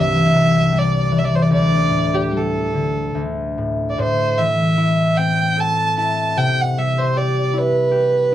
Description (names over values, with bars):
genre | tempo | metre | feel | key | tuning
celtic folk, Celtic slow air | 76 BPM | 3/4 | rubato | unclear | A4 = 437 Hz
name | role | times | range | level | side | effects
dark fiddle | melody | 0.0-8.3 s | G4 to A5 | -19 LUFS | right 3 dB | none
concert harp | accompaniment | 0.0-8.3 s | C2 to A4 | -18 LUFS | left 2 dB | none
room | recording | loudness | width
light reverb | dry, close 1970s-style studio recording | -15 LUFS | side -12 dB against mid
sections
0.0-8.3 A section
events
none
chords
0.0 C; 1.5 Dsus4; 3.2 D5; 4.0 Am; 6.4 C